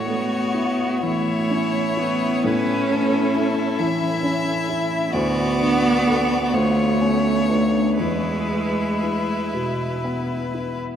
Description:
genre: classical, slow romantic movement for piano quartet.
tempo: 38-46 BPM (dotted quarters).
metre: 6/8.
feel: rubato.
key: A major.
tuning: A4 = 443 Hz.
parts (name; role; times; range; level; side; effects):
rich violin; melody; 0.0-10.8 s; A4 to E5; -28 LUFS; left 3 dB; none.
bright cello; second line; 0.0-9.5 s; G#3 to C#4; -22 LUFS; right 1 dB; none.
rich violin; second line; 0.0-10.8 s; C#4 to F#4; -27 LUFS; left 2 dB; none.
warm baby grand piano; accompaniment; 0.0-11.0 s; D2 to B4; -25 LUFS; equal; none.
room: wet cathedral reverb, RT60 5.2 s.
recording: in a vast, echoing space.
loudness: -19 LUFS.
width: side -9 dB against mid.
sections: 0.0-11.0 A section.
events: none.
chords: 0.0 A; 5.1 D; 6.5 Bm7b5/D; 8.0 E.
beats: 1.03 | 2.46 3.79 | 5.14 6.53 | 8.00 9.54.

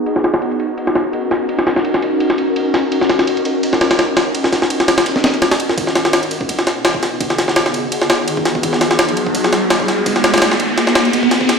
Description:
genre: drum and bass, jungle.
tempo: 168 BPM.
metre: 4/4.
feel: swing 54% on 16ths.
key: G# minor.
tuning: A4 = 438 Hz.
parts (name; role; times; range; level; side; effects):
ethereal airy pad; sustained chords; 0.0-11.6 s; B3 to A#4; -18 LUFS; equal; ensemble chorus, built-in reverb.
jungle sampler-style drum kit; drums; 0.1-11.6 s; kick drum, ride cymbal, snare drum; -15 LUFS; equal; high-pass filter on cymbals, high-pass filter on snare, high-pass filter on kick.
long sustained 808-style bass; bass; 5.8-11.6 s; D#1 to B1; -34 LUFS; equal; high-pass filter.
riser; sound effects; 7.8-11.6 s; none; -20 LUFS; equal; none.
room: wet lush hall reverb, RT60 2.4 s.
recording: played on a big sound system in a bare room, stone room reverb, low-pass filter.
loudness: -13 LUFS.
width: side -5 dB against mid.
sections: 0.0-5.8 A section; 5.8-11.6 B section.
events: filter sweep 0.0-5.8; build-up 5.8-11.6; riser 7.8-11.6.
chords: 0.1 D#m7; 5.8 G#m7.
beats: | 0.06 0.42 0.78 1.13 | 1.49 1.85 2.21 2.56 | 2.92 3.28 3.63 3.99 | 4.35 4.71 5.06 5.42 | 5.78 6.13 6.49 6.85 | 7.21 7.56 7.92 8.28 | 8.63 8.99 9.35 9.71 | 10.06 10.42 10.78 11.13 | 11.49.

